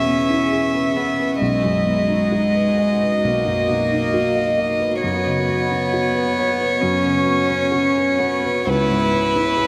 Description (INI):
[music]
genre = neoclassical piano and strings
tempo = 66 BPM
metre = 4/4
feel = rubato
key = unclear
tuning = A4 = 437 Hz
[part]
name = rich violin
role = melody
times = 0.0-9.7 s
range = B4 to E5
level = -23 LUFS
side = equal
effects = delay
[part]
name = clear cello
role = second line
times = 0.0-9.7 s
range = G#3 to E4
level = -23 LUFS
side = equal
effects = none
[part]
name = felt-muted upright piano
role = accompaniment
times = 0.0-9.7 s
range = B1 to E5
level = -25 LUFS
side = equal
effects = lush chorus
[part]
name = chorused pulse-width pad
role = sustained chords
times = 0.0-9.7 s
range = B3 to E5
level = -32 LUFS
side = equal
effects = none
[sound]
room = wet huge ambient reverb, RT60 7.9 s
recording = dreamy mix soaked in reverb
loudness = -19 LUFS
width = mono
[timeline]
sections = 0.0-9.7 A section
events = none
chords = 0.0 E; 1.4 B; 5.0 F#sus4; 8.7 C#m7